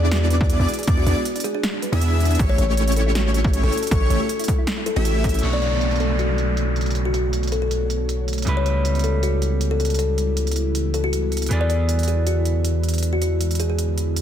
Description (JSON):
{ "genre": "future bass", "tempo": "158 BPM", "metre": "4/4", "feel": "swing 53% on 16ths, half-time", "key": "B minor", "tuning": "A4 = 440 Hz", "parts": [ { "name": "kalimba", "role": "melody", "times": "0.0-13.8 s", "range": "F#4 to D5", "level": "-26 LUFS", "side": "left 3 dB", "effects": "sidechain pumping, digital delay" }, { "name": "airy dreamy lead", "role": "arpeggios", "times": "0.0-5.4 s", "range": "C#5 to E5", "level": "-31 LUFS", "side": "left 1 dB", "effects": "chorus, sidechain pumping, digital delay" }, { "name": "thumb-piano-like synth pluck", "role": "arpeggios", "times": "0.0-5.4 s", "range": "G#3 to C#5", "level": "-34 LUFS", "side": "right 3 dB", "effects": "none" }, { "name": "dense compressed supersaw", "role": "riff", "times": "0.0-5.4 s", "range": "A3 to E5", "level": "-26 LUFS", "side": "right 1 dB", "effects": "sidechain pumping, digital delay" }, { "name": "long sustained 808-style bass", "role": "bass", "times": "0.0-14.2 s", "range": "A1 to E2", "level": "-21 LUFS", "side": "equal", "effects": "sidechain pumping" }, { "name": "big-room dance drum kit", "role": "drums", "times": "0.1-14.2 s", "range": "crash cymbal, hi-hat, snare drum", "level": "-29 LUFS", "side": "right 1 dB", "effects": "overdrive, low-pass filter on hats, low-pass filter on snare, low-pass filter on cymbals, low-pass filter on room" }, { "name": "electronic kick drum", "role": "drums", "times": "0.4-5.3 s", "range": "none", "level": "-21 LUFS", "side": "equal", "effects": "overdrive" }, { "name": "clean electric guitar", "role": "accompaniment", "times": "5.4-14.2 s", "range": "B2 to D5", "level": "-29 LUFS", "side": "right 4 dB", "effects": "sidechain pumping" }, { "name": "ethereal airy pad", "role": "sustained chords", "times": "6.7-14.2 s", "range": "C#3 to C#5", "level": "-31 LUFS", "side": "equal", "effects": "ensemble chorus, built-in reverb, phaser, sidechain pumping" }, { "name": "downlifter", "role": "sound effects", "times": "5.4-8.5 s", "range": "none", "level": "-28 LUFS", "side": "right 3 dB", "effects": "none" } ], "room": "light reverb", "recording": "dense, heavily limited modern master", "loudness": "-18 LUFS", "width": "side -10 dB against mid", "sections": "0.0-5.4 A section; 5.4-14.2 B section", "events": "drop 0.0-5.4", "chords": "0.0 E7; 2.4 A7; 5.4 Bm9; 8.5 C#m7b5; 11.5 E7", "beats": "0.12 0.49 | 0.88 1.25 1.64 2.01 | 2.39 2.77 3.15 3.53 | 3.91 4.29 4.67 5.05 | 5.43 5.81 6.19 6.57 | 6.95 7.33 7.71 8.09 | 8.47 8.85 9.23 9.61 | 9.99 10.37 10.75 11.13 | 11.51 11.89 12.27 12.65 | 13.03 13.41 13.79 14.17" }